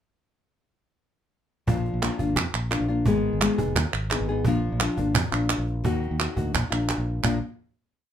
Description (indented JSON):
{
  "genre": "flamenco",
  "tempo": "173 BPM",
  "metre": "4/4",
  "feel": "straight",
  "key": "Bb phrygian dominant",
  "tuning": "A4 = 440 Hz",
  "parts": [
    { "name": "nylon-string guitar", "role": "accompaniment", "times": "1.7-7.4 s", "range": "Bb2 to Ab4", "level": "-26 LUFS", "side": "left 3 dB", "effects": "none" },
    { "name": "fretless electric bass", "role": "bass", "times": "1.7-7.4 s", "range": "F1 to F2", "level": "-28 LUFS", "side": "equal", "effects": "none" },
    { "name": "cajon", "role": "percussion", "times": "1.7-7.3 s", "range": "none", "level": "-29 LUFS", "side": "right 2 dB", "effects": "none" },
    { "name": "palmas hand claps", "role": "percussion", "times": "2.0-7.3 s", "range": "none", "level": "-27 LUFS", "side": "right 6 dB", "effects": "none" }
  ],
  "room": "moderate studio ambience, RT60 0.5 s",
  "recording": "minimal, uncompressed stereo recording",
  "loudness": "-22 LUFS",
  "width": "side -9 dB against mid",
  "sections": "1.7-7.2 groove; 7.2-8.1 final chord",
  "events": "none",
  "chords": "1.7 Bb; 3.1 Abm; 4.5 Bb; 5.8 Ebm; 6.5 Bb",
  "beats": "| 1.68 2.02 2.37 2.72 | 3.07 3.42 3.76 4.11 | 4.46 4.81 5.15 5.50 | 5.85 6.20 6.54 6.89 | 7.24"
}